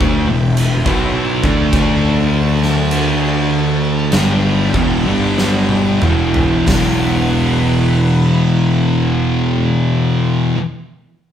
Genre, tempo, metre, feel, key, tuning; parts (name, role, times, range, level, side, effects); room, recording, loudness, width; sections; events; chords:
stoner and doom metal; 45-53 BPM; 4/4; straight; E minor; A4 = 442 Hz
phased string machine; sustained chords; 0.0-10.5 s; D4 to A5; -27 LUFS; left 1 dB; ensemble chorus, phaser
sludgy distorted guitar; riff; 0.0-10.6 s; E2 to D4; -20 LUFS; equal; overdrive
thick fuzz guitar; riff; 0.0-10.6 s; E2 to D4; -18 LUFS; left 6 dB; distortion
thick fuzz guitar; riff; 0.0-10.6 s; E2 to D4; -17 LUFS; right 4 dB; distortion
fuzz picked electric bass; bass; 0.0-10.5 s; E1 to D2; -21 LUFS; equal; overdrive
oversized low-tuned drum kit; drums; 0.0-7.0 s; crash cymbal, hi-hat, kick drum, snare drum, toms; -20 LUFS; equal
wet large studio reverb, RT60 0.9 s; band playing live in one room; -12 LUFS; side -9 dB against mid
0.0-6.7 A section; 6.7-11.3 B section
slowing down 0.0-6.7; drum fill 5.4-6.7
0.0 Em; 1.4 D5; 4.1 Em; 6.7 E5